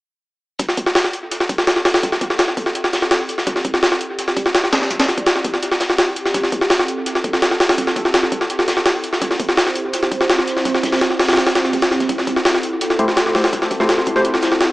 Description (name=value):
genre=drum and bass, jungle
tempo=167 BPM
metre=4/4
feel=straight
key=A dorian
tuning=A4 = 441 Hz
part: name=warbly tape-like pad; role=sustained chords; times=1.3-14.7 s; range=C4 to D5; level=-23 LUFS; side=right 1 dB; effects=chorus, built-in reverb, phaser
part: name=crunchy breakbeat drum kit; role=drums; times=0.6-14.7 s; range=hi-hat, snare drum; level=-29 LUFS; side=equal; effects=none
part: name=jungle sampler-style drum kit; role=drums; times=0.6-14.7 s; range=hi-hat, kick drum, snare drum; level=-16 LUFS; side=equal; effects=overdrive, high-pass filter on kick, high-pass filter on hats, high-pass filter on snare, dub echo
part: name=deep mellow chord stab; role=stabs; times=13.0-14.2 s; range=A3 to C5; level=-19 LUFS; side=left 1 dB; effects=chorus, dub echo
room=wet spring reverb, RT60 1.1 s, small room ambience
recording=echo-heavy mix, small speaker sound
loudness=-15 LUFS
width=side -19 dB against mid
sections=0.6-14.7 A section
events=none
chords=0.6 Am7